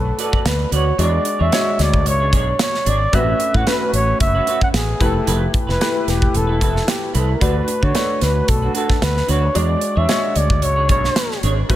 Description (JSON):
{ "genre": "polished 1980s jazz-funk pop", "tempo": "112 BPM", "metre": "4/4", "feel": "swing 54% on 16ths", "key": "unclear", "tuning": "A4 = 440 Hz", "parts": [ { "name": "breathy flugelhorn", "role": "melody", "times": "0.0-11.4 s", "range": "G4 to F#5", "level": "-21 LUFS", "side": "equal", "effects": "none" }, { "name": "clear concert grand piano", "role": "accompaniment", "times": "0.0-11.8 s", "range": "G#3 to D5", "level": "-24 LUFS", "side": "left 2 dB", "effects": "analog chorus" }, { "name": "fretless electric bass", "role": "bass", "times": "0.0-11.8 s", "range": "E1 to D3", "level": "-19 LUFS", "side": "equal", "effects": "none" }, { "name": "semi-hollow electric guitar", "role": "riff", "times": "0.1-11.8 s", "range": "C#4 to D5", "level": "-27 LUFS", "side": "right 6 dB", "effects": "lush chorus" }, { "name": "modern studio drum kit", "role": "drums", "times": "0.2-11.8 s", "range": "hi-hat, kick drum, snare drum", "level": "-20 LUFS", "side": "equal", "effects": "none" } ], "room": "light reverb, studio reverb", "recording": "none", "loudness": "-15 LUFS", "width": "side -13 dB against mid", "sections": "0.0-11.8 A section", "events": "none", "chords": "0.0 D6; 1.0 E13; 3.1 A69; 5.0 Fmaj9#11; 7.4 D6; 9.6 E13" }